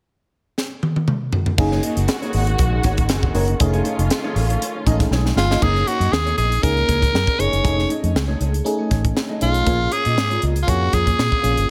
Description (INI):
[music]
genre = polished 1980s jazz-funk pop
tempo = 119 BPM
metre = 4/4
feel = swing 54% on 16ths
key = F# major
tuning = A4 = 443 Hz
[part]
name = crisp fusion drum kit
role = drums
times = 0.6-11.7 s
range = crash cymbal, hi-hat, kick drum, snare drum, toms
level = -24 LUFS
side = equal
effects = gated reverb
[part]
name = FM electric piano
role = accompaniment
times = 1.6-11.7 s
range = G#3 to A#4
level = -28 LUFS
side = equal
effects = phaser, subtle chorus
[part]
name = muted studio string section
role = sustained chords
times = 1.6-5.6 s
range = D#3 to F#4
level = -30 LUFS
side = equal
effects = none
[part]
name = mellow electric guitar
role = riff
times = 1.6-11.6 s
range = A3 to D#5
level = -31 LUFS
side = equal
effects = lush chorus
[part]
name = vintage muted fingered electric bass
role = bass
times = 1.6-11.7 s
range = F1 to A#2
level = -23 LUFS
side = equal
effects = none
[part]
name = raspy alto saxophone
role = melody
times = 5.4-11.7 s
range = F4 to C#5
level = -23 LUFS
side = equal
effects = none
[sound]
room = little or no reverb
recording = none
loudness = -19 LUFS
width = mono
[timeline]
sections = 0.0-1.6 A section; 1.6-5.6 B section; 5.6-11.7 C section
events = drum fill 0.6-1.6, 5.1-5.6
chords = 0.0 N.C.; 1.6 F#69; 3.6 F7alt; 5.6 F#69; 7.6 F7alt; 9.7 A#m7